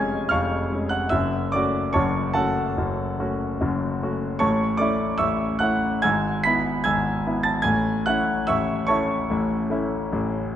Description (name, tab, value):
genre	classical, romantic character piece for solo piano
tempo	73 BPM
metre	4/4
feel	rubato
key	F# minor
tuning	A4 = 440 Hz
part	clear concert grand piano	solo	0.0-10.6 s	E#1 to B6	-21 LUFS	equal	none
room	moderate scoring stage reverb, RT60 1.8 s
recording	none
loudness	-21 LUFS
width	side -10 dB against mid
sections	0.0-10.6 A section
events	none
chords	0.0 C#/E#; 1.1 F#m; 4.4 A; 6.0 E/G#; 7.7 A